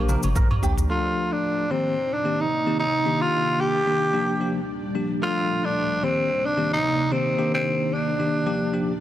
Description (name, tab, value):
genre	afrobeats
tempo	111 BPM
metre	4/4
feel	swing 55% on 16ths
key	Bb major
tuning	A4 = 442 Hz
part	growling tenor saxophone	melody	0.0-9.0 s	Bb3 to G4	-24 LUFS	equal	digital delay
part	bell-like tine electric piano	accompaniment	0.0-8.9 s	Eb3 to A4	-27 LUFS	left 2 dB	fast stereo tremolo
part	ethereal airy pad	sustained chords	0.0-9.0 s	C3 to G4	-31 LUFS	right 1 dB	ensemble chorus, built-in reverb, tremolo
part	warm sub bass	bass	0.0-0.8 s	G1 to Bb1	-24 LUFS	equal	none
part	direct-recorded clean electric guitar	riff	0.1-0.7 s	G4 to Bb4	-34 LUFS	right 5 dB	ensemble chorus, digital delay
part	afro-pop drum kit	drums	0.1-0.9 s	kick drum, shaker, toms	-24 LUFS	equal	none
part	agogo bells	percussion	0.2-0.6 s	none	-36 LUFS	right 5 dB	none
room	light reverb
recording	dense, heavily limited modern master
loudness	-21 LUFS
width	side -12 dB against mid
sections	0.9-9.0 A section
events	drum fill 0.0-0.9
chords	0.0 Bb6; 0.9 Dm; 1.7 Cm7; 3.1 Ebmaj7; 4.1 Bb6; 5.2 Dm; 6.0 Cm7; 7.4 Ebmaj7; 8.5 Bb6